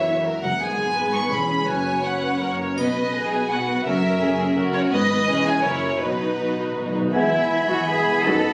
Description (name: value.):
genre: classical, dramatic, fast romantic movement for symphony orchestra.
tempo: 166 BPM.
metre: 3/4.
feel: rubato.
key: B major.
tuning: A4 = 440 Hz.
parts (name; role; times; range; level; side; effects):
rich symphonic violin section; melody; 0.0-8.5 s; B4 to C#6; -26 LUFS; equal; none.
warm symphonic violin section; second line; 0.0-8.5 s; D#4 to E5; -32 LUFS; equal; none.
dark studio viola section; accompaniment; 0.0-8.5 s; E3 to B4; -29 LUFS; equal; none.
concert harp; arpeggios; 0.0-8.5 s; E2 to F#5; -33 LUFS; equal; none.
warm symphonic cello section; bass; 0.0-8.5 s; E2 to A4; -30 LUFS; equal; none.
warm symphonic double bass section; bass; 0.0-8.5 s; E1 to F#2; -35 LUFS; equal; none.
triangle; percussion; 2.8-3.5 s; none; -44 LUFS; equal; none.
timpani; percussion; 6.0-7.1 s; B2; -34 LUFS; equal; none.
bright oboe; second line; 7.1-8.5 s; G#5 to B5; -29 LUFS; equal; none.
hollow concert flute; second line; 7.1-8.5 s; E5 to A5; -29 LUFS; equal; none.
mellow clarinet; second line; 7.1-8.5 s; D#5 to G#5; -33 LUFS; equal; none.
mellow bassoon; accompaniment; 7.1-8.5 s; B3; -33 LUFS; equal; none.
mellow French horn section; sustained chords; 7.1-8.4 s; D#3 to B3; -27 LUFS; equal; none.
room: wet recital hall reverb, RT60 1.4 s.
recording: recorded on a phone in the room, club reverb.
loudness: -22 LUFS.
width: mono.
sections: 0.0-7.1 A section; 7.1-8.5 B section.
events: timpani fill 6.0-7.1.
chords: 0.0 F#7/E; 0.6 G#m; 1.3 C#m7/E; 1.7 F#sus4; 2.4 F#; 2.8 B; 3.9 F#7; 4.9 G#m; 5.3 C#m7/E; 5.6 F#7; 6.0 B; 7.1 E.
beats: 0.26 | 0.61 0.96 1.32 | 1.68 2.04 2.41 | 2.77 3.14 3.50 | 3.85 4.21 4.57 | 4.92 5.28 5.64 | 6.01 6.39 6.76 | 7.14 7.51 7.88 | 8.24.